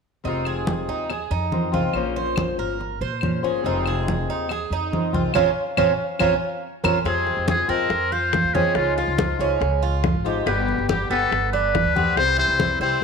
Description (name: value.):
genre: latin, Cuban son and guajira.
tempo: 141 BPM.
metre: 4/4.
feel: straight.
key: F minor.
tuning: A4 = 441 Hz.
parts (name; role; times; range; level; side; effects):
fingerpicked swing-style acoustic guitar; accompaniment; 0.2-13.0 s; B2 to C5; -27 LUFS; left 9 dB; none.
Cuban tres; arpeggios; 0.2-13.0 s; B3 to C5; -25 LUFS; right 9 dB; none.
upright bass; bass; 0.2-13.0 s; F1 to Bb2; -28 LUFS; equal; none.
congas; percussion; 0.2-13.0 s; none; -26 LUFS; right 1 dB; none.
claves; percussion; 0.5-6.9 s; none; -29 LUFS; left 13 dB; none.
trumpet with metal mute; melody; 7.1-13.0 s; F4 to C5; -22 LUFS; left 4 dB; none.
bongos; percussion; 7.1-13.0 s; none; -30 LUFS; left 13 dB; none.
room: wet echo chamber reverb, RT60 1.4 s, small room ambience.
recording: 1960s-style stereo with parts hard left and right.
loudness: -19 LUFS.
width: side -5 dB against mid.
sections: 0.2-7.1 A section; 7.1-13.0 B section.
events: band accent 5.4-7.1.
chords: 0.2 Fm7; 1.9 Bbmadd9; 3.6 Fm7; 5.4 Bbmadd9; 7.1 Fm; 8.8 Dbadd9; 10.5 G; 12.2 C.